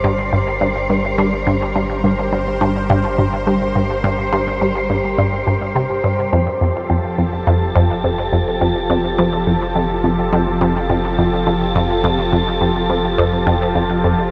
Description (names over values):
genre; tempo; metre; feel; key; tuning
ambient, sequencer-driven space music; 105 BPM; 4/4; straight; unclear; A4 = 442 Hz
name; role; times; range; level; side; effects
lush unison pad; sustained chords; 0.0-14.3 s; F3 to D5; -24 LUFS; equal; chorus, phaser
resonant blip pluck; riff; 0.0-14.1 s; F2 to C3; -20 LUFS; equal; phaser, analog delay
round analog bass; bass; 0.0-14.3 s; F1 to G1; -30 LUFS; equal; none
wind-like tuned noise texture; texture; 0.0-14.3 s; C5 to A5; -26 LUFS; equal; built-in reverb
room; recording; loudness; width
wet huge ambient reverb, RT60 7.3 s; none; -17 LUFS; mono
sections
0.0-14.3 A section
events
fade-in on analog synth pad 0.0-14.3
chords
0.0 Gm; 6.3 Fadd9